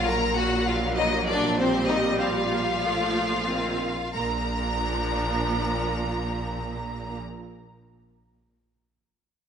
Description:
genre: quick classical-period movement for string orchestra.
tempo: 88-100 BPM.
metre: 4/4.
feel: rubato.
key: Bb major.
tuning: A4 = 440 Hz.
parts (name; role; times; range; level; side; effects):
clear chamber violin section; melody; 0.0-7.2 s; C5 to Bb5; -28 LUFS; left 2 dB; none.
rich chamber violin section; second line; 0.0-7.2 s; C4 to Bb4; -30 LUFS; left 2 dB; none.
rich chamber viola section; accompaniment; 0.0-7.2 s; Eb3 to D4; -30 LUFS; right 1 dB; none.
rich symphonic cello section; bass; 0.0-7.2 s; Bb2; -31 LUFS; right 4 dB; none.
rich symphonic double bass section; bass; 0.0-7.2 s; Bb1; -33 LUFS; right 1 dB; none.
room: wet scoring stage reverb, RT60 1.8 s.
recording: nothing above 10.5 kHz.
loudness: -23 LUFS.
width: side -8 dB against mid.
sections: 0.0-4.2 A section; 4.2-6.8 B section.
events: slowing down 0.0-4.2.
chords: 0.0 Ebmadd9/Bb; 1.6 F7/Bb; 4.2 Bb.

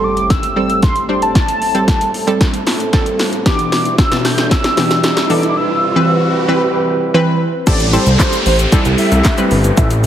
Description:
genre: dance-pop.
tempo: 114 BPM.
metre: 4/4.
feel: straight.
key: A minor.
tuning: A4 = 442 Hz.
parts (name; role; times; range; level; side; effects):
warm velvety synth lead; melody; 0.0-6.6 s; A5 to G6; -18 LUFS; equal; chorus, dub echo.
analog pluck; accompaniment; 0.0-10.0 s; B2 to B4; -17 LUFS; right 1 dB; chorus, sidechain pumping.
mellow French horn section; sustained chords; 0.0-10.1 s; A2 to B4; -22 LUFS; right 1 dB; sidechain pumping.
riser, impact and downlifter; sound effects; 0.0-10.1 s; none; -23 LUFS; right 1 dB; none.
deep house drum kit; drums; 0.2-10.1 s; crash cymbal, handclaps, hi-hat, kick drum, shaker, snare drum; -15 LUFS; equal; overdrive.
wide unison lead; melody; 7.7-9.9 s; C5 to E5; -20 LUFS; right 1 dB; sidechain pumping, dub echo.
fat analog bass; bass; 7.7-10.1 s; G1 to C2; -14 LUFS; equal; sidechain pumping.
room: moderate lush hall reverb, RT60 2.1 s.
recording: heavily compressed radio sound.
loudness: -11 LUFS.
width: side -10 dB against mid.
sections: 0.0-7.7 A section; 7.7-10.1 B section.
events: build-up 0.0-7.7; drum fill 0.0-5.6; impact 0.0-1.4; riser 0.0-7.7; drop 7.7-10.1.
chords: 0.0 Am7; 3.5 Em7/B; 5.6 Cmaj7; 7.7 Am7.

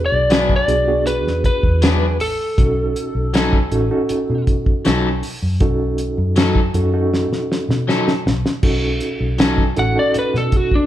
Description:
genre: straight-eighth soul blues.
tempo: 79 BPM.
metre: 4/4.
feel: straight.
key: B mixolydian.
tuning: A4 = 440 Hz.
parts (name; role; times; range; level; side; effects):
lightly driven lead guitar; melody; 0.0-4.4, 9.8-10.9 s; D4 to F#5; -19 LUFS; left 1 dB; none.
reed electric piano; accompaniment; 0.0-10.9 s; B3 to A4; -23 LUFS; right 2 dB; fast tremolo.
vintage muted fingered electric bass; bass; 0.0-10.7 s; A1 to B2; -21 LUFS; equal; none.
electric guitar at the edge of break-up; stabs; 0.3-9.6 s; F#3 to A4; -22 LUFS; left 2 dB; none.
cloth-damped thuddy drum kit; drums; 0.3-10.9 s; crash cymbal, hi-hat, kick drum, snare drum; -19 LUFS; equal; none.
room: moderate large studio reverb, RT60 1.4 s.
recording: band playing live in one room.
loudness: -15 LUFS.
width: side -12 dB against mid.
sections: 0.0-8.6 A section; 8.6-10.9 B section.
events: drum fill 7.1-8.6; lead electric guitar solo 8.6-10.9.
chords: 0.0 E9; 2.6 B9.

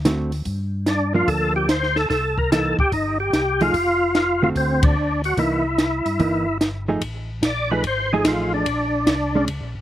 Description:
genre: soul jazz organ trio.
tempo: 146 BPM.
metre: 4/4.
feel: swing 67% on 8ths.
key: unclear.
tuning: A4 = 440 Hz.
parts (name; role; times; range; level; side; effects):
mellow tonewheel organ; bass; 0.0-9.8 s; F1 to G2; -27 LUFS; equal; chorus vibrato.
hollow-body jazz guitar; accompaniment; 0.1-9.5 s; D3 to Ab4; -22 LUFS; right 2 dB; none.
compact cocktail drum kit; drums; 0.1-9.6 s; hi-hat, kick drum, ride cymbal, snare drum; -22 LUFS; equal; none.
percussive tonewheel organ; melody; 0.9-9.4 s; C4 to D5; -21 LUFS; left 1 dB; slow rotary speaker, overdrive, chorus vibrato.
room: little or no reverb.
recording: recorded outdoors, with no room sound.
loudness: -18 LUFS.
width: side -12 dB against mid.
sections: 0.0-7.0 A section; 7.0-9.8 B section.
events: band accent 4.8; tonewheel organ solo 7.0-9.8.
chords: 0.5 Gm7; 2.1 C7#9; 3.7 F; 4.6 D7; 5.4 C7#9; 7.0 F7#9; 8.7 Bb7#9.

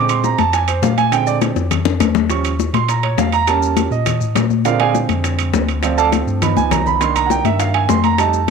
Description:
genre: Afro-Cuban jazz.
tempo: 204 BPM.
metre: 4/4.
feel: straight.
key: Bb mixolydian.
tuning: A4 = 440 Hz.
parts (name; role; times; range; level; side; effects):
warm concert grand piano; accompaniment; 0.0-8.5 s; D3 to Db6; -17 LUFS; right 9 dB; none.
mellow tine electric piano; bass; 0.0-8.5 s; C2 to Bb2; -20 LUFS; left 1 dB; medium stereo tremolo.
bongos; percussion; 0.1-8.5 s; none; -24 LUFS; left 13 dB; none.
congas; percussion; 0.1-8.5 s; none; -21 LUFS; left 18 dB; none.
maracas; percussion; 0.1-8.5 s; none; -33 LUFS; left 19 dB; none.
timbales; percussion; 0.1-8.3 s; none; -26 LUFS; right 13 dB; none.
room: moderate spring reverb, RT60 1.3 s, studio reverb.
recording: 1960s-style stereo with parts hard left and right.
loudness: -14 LUFS.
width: side -5 dB against mid.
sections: 0.0-8.5 A section.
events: grand piano solo 0.0-8.5; drum fill 1.4-2.3, 6.6-7.0.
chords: 0.0 Bb7; 2.3 Eb7; 3.5 Edim7; 4.7 Bb7; 5.8 Dm7; 6.4 Gaug7; 7.0 Cm7.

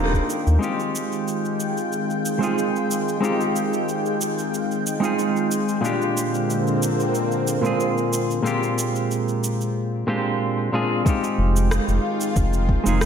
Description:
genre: sunset chillout.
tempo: 92 BPM.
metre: 4/4.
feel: straight.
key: F dorian.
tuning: A4 = 440 Hz.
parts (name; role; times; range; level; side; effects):
semi-hollow electric guitar; accompaniment; 0.0-13.1 s; Bb2 to Bb4; -22 LUFS; moving between left 3 dB and right 5 dB; auto-pan, ping-pong delay, slapback echo.
lush unison pad; sustained chords; 0.0-13.1 s; D3 to G5; -26 LUFS; equal; chorus, phaser.
round analog bass; bass; 0.0-0.6, 11.4-13.1 s; Eb1 to Eb2; -20 LUFS; equal; none.
electronic kick drum; drums; 0.1-0.3, 11.1-12.8 s; none; -20 LUFS; equal; overdrive, studio reverb.
electronic shaker and rim click; drums; 0.1-13.1 s; none; -30 LUFS; right 1 dB; overdrive, studio reverb.
room: wet recital hall reverb, RT60 1.4 s, digital ambience.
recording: big arena sound.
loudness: -20 LUFS.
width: side -7 dB against mid.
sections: 0.6-11.1 A section; 11.1-13.1 B section.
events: band accent 0.0; filter sweep on analog synth pad 0.6-11.1.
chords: 0.0 Ebmaj7; 0.6 Fm9; 5.8 Bb13; 11.1 Fm9.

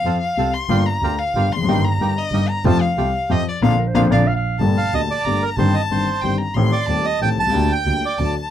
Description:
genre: tango.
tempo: 184 BPM.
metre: 3/4.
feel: rubato.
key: Bb major, G minor from 4.6 s.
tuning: A4 = 440 Hz.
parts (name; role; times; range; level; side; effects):
rich violin; second line; 0.0-8.5 s; D5 to C6; -24 LUFS; left 3 dB; none.
dark double bass; bass; 0.0-8.3 s; F1 to F2; -21 LUFS; right 3 dB; none.
warm concert grand piano; accompaniment; 0.1-8.3 s; Eb1 to G4; -21 LUFS; left 5 dB; none.
bandoneon; stabs; 0.1-4.2 s; A3 to A4; -27 LUFS; right 10 dB; none.
mellow clarinet; second line; 3.8-4.6 s; Bb4 to F5; -24 LUFS; right 4 dB; none.
bandoneon; melody; 4.8-8.3 s; Bb4 to A5; -21 LUFS; right 6 dB; none.
room: little or no reverb.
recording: dry, close 1970s-style studio recording.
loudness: -16 LUFS.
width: side -10 dB against mid.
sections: 0.0-4.6 A section; 4.6-8.5 B section.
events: violin solo 0.0-4.6; band accent 3.6-4.6.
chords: 0.0 F; 0.7 Gm7; 1.7 Eb/G; 2.7 Fadd9; 3.6 Bb; 4.6 Gmadd9; 5.6 Cm/G; 6.6 Am7b5; 7.5 Gm/D; 8.2 D.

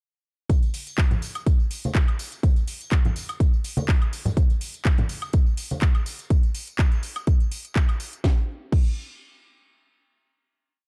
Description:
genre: house.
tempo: 124 BPM.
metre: 4/4.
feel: swing 54% on 16ths.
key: none.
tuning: none.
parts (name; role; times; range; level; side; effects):
electronic kick drum; drums; 0.5-8.9 s; none; -22 LUFS; equal; none.
house drum kit; drums; 0.5-8.9 s; crash cymbal, handclaps, hi-hat, snare drum, tambourine, woodblock; -35 LUFS; equal; sidechain pumping on hats, sidechain pumping on perc, sidechain pumping on cymbals.
congas and tambourine; percussion; 0.5-6.3 s; none; -33 LUFS; equal; sidechain pumping on perc.
room: little or no reverb.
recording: dark, warm production.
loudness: -23 LUFS.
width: mono.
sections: 0.5-8.2 drop; 8.2-10.9 final hit.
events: drop 0.5-8.2.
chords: none.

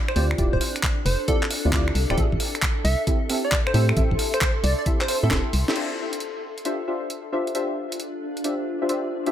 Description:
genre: UK garage, two-step garage.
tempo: 134 BPM.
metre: 4/4.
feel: swing 67% on 16ths.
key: D minor.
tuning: A4 = 440 Hz.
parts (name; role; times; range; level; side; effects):
granular cloud pad; texture; 0.0-9.3 s; D4 to C6; -32 LUFS; left 1 dB; built-in reverb, sidechain pumping.
plucky unison lead; melody; 0.1-5.4 s; A4 to E5; -29 LUFS; right 1 dB; ping-pong delay.
breakbeat sampler-style drum kit; drums; 0.1-9.3 s; crash cymbal, finger snaps, handclaps, hi-hat, snare drum; -27 LUFS; equal; none.
deep mellow chord stab; stabs; 0.2-9.3 s; C4 to E5; -28 LUFS; left 1 dB; chorus, ping-pong delay.
organ-like FM bass; bass; 0.2-5.6 s; D1 to A2; -22 LUFS; equal; none.
electronic kick drum; drums; 0.4-5.4 s; none; -24 LUFS; equal; none.
room: light reverb, digital ambience.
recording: none.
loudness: -21 LUFS.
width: side -10 dB against mid.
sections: 0.0-5.8 A section; 5.8-9.3 B section.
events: filter sweep on synth stab 0.0-5.8; drum fill 5.3-5.8; band accent 5.6.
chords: 0.0 Dm11; 2.2 Am7; 5.8 Dm11.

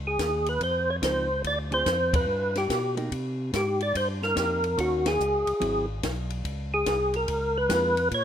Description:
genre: soul jazz organ trio.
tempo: 144 BPM.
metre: 4/4.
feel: swing 65% on 8ths.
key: unclear.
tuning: A4 = 436 Hz.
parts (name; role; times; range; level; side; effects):
tonewheel organ; bass; 0.0-8.2 s; Ab1 to C3; -31 LUFS; equal; slow rotary speaker.
percussive tonewheel organ; melody; 0.1-8.2 s; Gb4 to D5; -25 LUFS; equal; slow rotary speaker, chorus vibrato.
compact cocktail drum kit; drums; 0.2-8.2 s; hi-hat, kick drum, ride cymbal, snare drum; -33 LUFS; left 1 dB; none.
hollow-body jazz guitar; accompaniment; 1.0-7.9 s; D3 to Ab4; -34 LUFS; right 2 dB; none.
room: light reverb, small room ambience.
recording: rough home demo mix.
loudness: -24 LUFS.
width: side -9 dB against mid.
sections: 0.0-8.2 A section.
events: band accent 2.1, 5.0.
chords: 0.0 Dbmaj9; 1.4 Dm7b5; 2.3 G; 3.1 Cm7; 4.8 Ebm7; 5.6 Ab7alt; 6.4 Db6.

